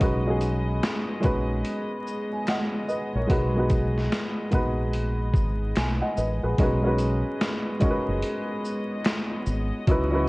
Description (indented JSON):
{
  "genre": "lo-fi hip hop",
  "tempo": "73 BPM",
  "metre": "4/4",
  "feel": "swing 64% on 16ths",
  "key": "B major",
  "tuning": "A4 = 442 Hz",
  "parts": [
    { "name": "warm upright piano", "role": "accompaniment", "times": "0.0-10.3 s", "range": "F#3 to G#5", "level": "-27 LUFS", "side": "equal", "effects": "cassette tape, low-pass filter" },
    { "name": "warm studio string section", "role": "sustained chords", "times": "0.0-10.3 s", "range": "C#3 to D#5", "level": "-34 LUFS", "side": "equal", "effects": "low-pass filter" },
    { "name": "deep dub fingered electric bass", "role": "bass", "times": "0.0-10.3 s", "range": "F#1 to C#2", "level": "-26 LUFS", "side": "equal", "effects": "none" },
    { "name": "boom bap sampler-style drum kit", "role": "drums", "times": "0.0-10.1 s", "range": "finger snaps, hi-hat, kick drum, shaker, snare drum", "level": "-26 LUFS", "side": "equal", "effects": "vintage 12-bit sampler grit" },
    { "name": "finger snap", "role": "percussion", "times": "0.8-9.3 s", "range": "none", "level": "-44 LUFS", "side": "left 1 dB", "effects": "none" }
  ],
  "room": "light reverb, small room ambience",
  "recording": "worn, warbling old tape, cassette tape, vinyl crackle, warbly pitch drift, nothing above 10.8 kHz, faint mains hum",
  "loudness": "-23 LUFS",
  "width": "side -23 dB against mid",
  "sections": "0.0-6.6 A section; 6.6-10.3 B section",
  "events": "none",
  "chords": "0.0 B69; 3.3 B6; 6.6 B69"
}